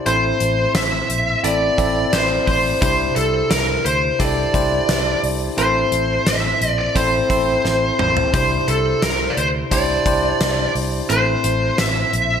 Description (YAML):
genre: 1980s-style pop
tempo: 87 BPM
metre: 4/4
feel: straight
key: unclear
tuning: A4 = 440 Hz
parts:
  - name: bell-like tine electric piano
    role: accompaniment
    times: 0.0-12.4 s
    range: A2 to D5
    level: -22 LUFS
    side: equal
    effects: fast stereo tremolo
  - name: high-gain lead guitar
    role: melody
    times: 0.1-12.4 s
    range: A4 to E5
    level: -19 LUFS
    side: left 1 dB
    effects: distortion
  - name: vintage muted fingered electric bass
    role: bass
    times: 0.1-12.4 s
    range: A1 to D2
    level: -24 LUFS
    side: equal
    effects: none
  - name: gated 80s drum kit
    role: drums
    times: 0.1-12.3 s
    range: hi-hat, kick drum, snare drum, toms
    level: -22 LUFS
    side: equal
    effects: gated reverb
room: moderate plate reverb, RT60 1.8 s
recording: bright 1980s-style digital production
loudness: -16 LUFS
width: side -8 dB against mid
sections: 0.0-12.4 A section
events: drum fill 7.6-8.3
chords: 0.1 Am; 2.8 Cadd9; 5.6 Am; 8.3 Cadd9; 11.1 Am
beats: | 0.06 0.75 1.44 2.13 | 2.82 3.51 4.20 4.89 | 5.58 6.27 6.96 7.65 | 8.34 9.03 9.72 10.40 | 11.10 11.79